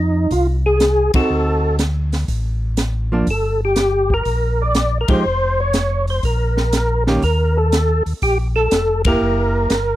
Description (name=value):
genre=soul jazz organ trio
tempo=121 BPM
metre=4/4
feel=swing 68% on 8ths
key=unclear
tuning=A4 = 441 Hz
part: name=percussive tonewheel organ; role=melody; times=0.0-10.0 s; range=Eb4 to D5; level=-18 LUFS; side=equal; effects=chorus vibrato, slow rotary speaker, slapback echo
part: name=mellow tonewheel organ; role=bass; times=0.0-10.0 s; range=F1 to F2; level=-19 LUFS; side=equal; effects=overdrive, slow rotary speaker
part: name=open jazz drum kit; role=drums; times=0.3-9.9 s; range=hi-hat, kick drum, ride cymbal, snare drum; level=-22 LUFS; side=equal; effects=none
part: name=hollow-body jazz guitar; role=accompaniment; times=1.1-9.7 s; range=Eb3 to G4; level=-19 LUFS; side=right 2 dB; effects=none
room=small room ambience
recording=dry, close 1970s-style studio recording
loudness=-15 LUFS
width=side -14 dB against mid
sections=0.0-10.0 A section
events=band accent 1.1, 5.0, 9.0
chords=0.0 Fm7; 1.3 D7b9; 3.3 Gm; 5.3 Dbmaj7/F; 6.2 Bbmadd11; 7.2 Eb5; 9.2 Gb7b9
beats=0.32 0.81 | 1.30 1.79 2.29 2.78 | 3.28 3.77 4.26 4.76 | 5.25 5.75 6.24 6.74 | 7.23 7.73 8.22 8.72 | 9.21 9.71